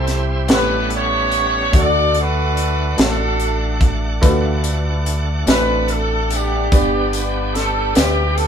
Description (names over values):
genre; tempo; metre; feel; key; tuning
slow gospel; 48 BPM (dotted quarters); 6/8; straight; unclear; A4 = 445 Hz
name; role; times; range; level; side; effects
warm horn section; melody; 0.0-8.5 s; B3 to D5; -19 LUFS; equal; none
clear baby grand piano; accompaniment; 0.0-8.5 s; G2 to F#5; -24 LUFS; right 1 dB; none
bright tonewheel organ; sustained chords; 0.0-8.5 s; G3 to F#5; -26 LUFS; right 2 dB; slow rotary speaker, overdrive
deep dub fingered electric bass; bass; 0.0-8.5 s; G1 to D2; -21 LUFS; equal; none
tight funk drum kit; drums; 0.1-8.5 s; hi-hat, kick drum, snare drum; -17 LUFS; equal; none
tambourine; percussion; 4.2-8.4 s; none; -31 LUFS; left 5 dB; none
room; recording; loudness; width
light reverb; band playing live in one room; -15 LUFS; side -8 dB against mid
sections
0.0-8.5 A section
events
none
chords
0.5 A13; 1.7 D; 6.7 G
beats
0.49 | 1.73 2.98 | 4.23 5.47 | 6.72 7.96